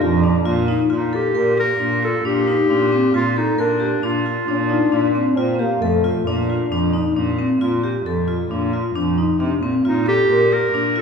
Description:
contemporary instrumental, chamber music in an uneven meter; 134 BPM; 5/4; straight; A4 = 439 Hz
bright clarinet; melody; 0.0-5.2, 9.8-11.0 s; D4 to Bb4; -19 LUFS; right 1 dB
mellow French horn; second line; 0.0-0.9, 4.5-7.2 s; A3 to D4; -23 LUFS; left 2 dB
vibraphone with hard mallets; arpeggios; 0.0-11.0 s; C4 to Bb4; -20 LUFS; left 4 dB
clear cello; bass; 0.0-11.0 s; F2 to C3; -22 LUFS; right 3 dB
wet recital hall reverb, RT60 1.9 s; heard from further back in the room; -16 LUFS; side -6 dB against mid
0.9-11.0 A section
0.0 Bb; 0.9 Ebmaj9/Bb (rootless); 5.4 Bb; 9.8 Ebadd9/Bb (rootless)

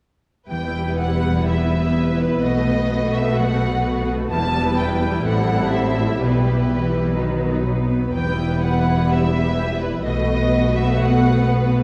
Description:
classical, dramatic, fast romantic movement for symphony orchestra; 126 BPM; 4/4; straight; E minor; A4 = 441 Hz
warm symphonic violin section; melody; 0.5-11.7 s; B4 to A5; -28 LUFS; equal
warm symphonic violin section; second line; 0.5-11.8 s; D#4 to B4; -29 LUFS; equal
warm symphonic viola section; accompaniment; 0.5-11.8 s; F#3 to C4; -26 LUFS; equal
concert harp; arpeggios; 0.5-11.8 s; E2 to C5; -28 LUFS; equal
rich symphonic double bass section; bass; 0.5-11.8 s; E1 to B1; -27 LUFS; equal
warm studio cello section; bass; 0.5-11.8 s; E2 to E3; -26 LUFS; equal
wet concert hall reverb, RT60 1.8 s; -20 LUFS; mono
0.5-11.8 A section
0.5 Em; 2.4 B7; 4.3 Em; 5.3 Am7; 6.2 Em/B; 7.2 B; 8.1 Em; 10.1 B7

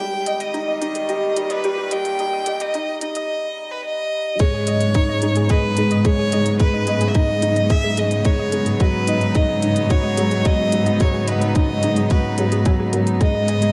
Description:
piano and strings electronica; 109 BPM; 4/4; straight; G# minor; A4 = 441 Hz
rich violin; melody; 0.0-13.7 s; B4 to G5; -26 LUFS; equal; delay
warm chamber string section; sustained chords; 0.0-13.7 s; G#2 to D#4; -30 LUFS; equal; sidechain pumping
warbly dusty pluck; arpeggios; 0.0-13.7 s; D#4 to G#5; -33 LUFS; equal
felt-muted upright piano; riff; 0.0-13.7 s; F#3 to D#5; -27 LUFS; equal; delay
electronic hi-hat; drums; 0.3-13.7 s; -33 LUFS; equal
dark studio cello section; bass; 4.4-13.7 s; G#2; -23 LUFS; equal; tube saturation, sidechain pumping
electronic kick drum; drums; 4.4-13.3 s; -20 LUFS; equal
light reverb, small room ambience; high-pass filter; -19 LUFS; mono
0.0-4.4 A section; 4.4-13.7 B section
build-up 0.0-4.4; filter sweep on synth arpeggio sound 0.0-4.4; drop 4.4-13.7
0.0 D#/G#; 4.4 G#m; 8.8 B/G#; 13.2 G#m

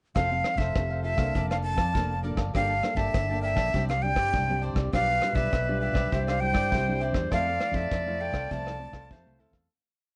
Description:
samba and choro; 101 BPM; 4/4; straight; F major; A4 = 440 Hz
cavaquinho; accompaniment; 0.1-9.7 s; D4 to A5; -40 LUFS; equal
breathy bright jazz flute; melody; 0.2-9.4 s; E5 to A5; -31 LUFS; equal
nylon-string guitar; accompaniment; 0.2-9.7 s; G2 to A4; -37 LUFS; equal
fingered electric bass; bass; 0.2-9.7 s; F1 to G2; -33 LUFS; equal
vintage brush drum kit; drums; 0.2-9.7 s; hi-hat, kick drum, rim click; -33 LUFS; equal
warm clarinet; second line; 4.9-9.7 s; A4 to D5; -35 LUFS; equal
light reverb; nothing above 10.3 kHz; -27 LUFS; mono
0.2-9.7 A section
fade-out 7.3-9.7
0.2 F; 1.4 Bbmaj7/F; 2.5 Gmadd9; 3.7 Csus2; 4.9 G7/B; 6.1 Cadd9; 7.3 Fmaj7

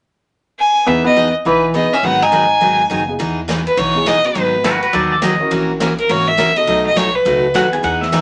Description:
country, western swing; 207 BPM; 4/4; swing 62% on 8ths; E major; A4 = 440 Hz
clear fiddle; melody; 0.6-7.7 s; A#4 to G#5; -17 LUFS; equal
archtop guitar, miked and amplified; second line; 0.9-3.1 s; E3 to D#4; -19 LUFS; equal
dark upright piano; accompaniment; 0.9-8.1 s; B3 to B4; -27 LUFS; equal
picked steel-string acoustic guitar; accompaniment; 0.9-8.2 s; B2 to A#4; -22 LUFS; equal
upright bass; bass; 0.9-8.2 s; F#1 to E2; -31 LUFS; equal
swinging big-band drum kit; drums; 3.2-8.2 s; hi-hat, ride cymbal, snare drum; -28 LUFS; equal
pedal steel guitar; second line; 4.6-5.5, 7.6-8.2 s; F#4 to G#5; -19 LUFS; equal
moderate studio reverb, RT60 0.6 s; nothing above 10.6 kHz; -15 LUFS; mono
0.9-3.2 A section; 3.2-8.2 B section
0.0 N.C.; 0.9 Emaj7; 2.0 G#m7; 3.2 Emaj7; 4.4 G#m7; 6.7 B7

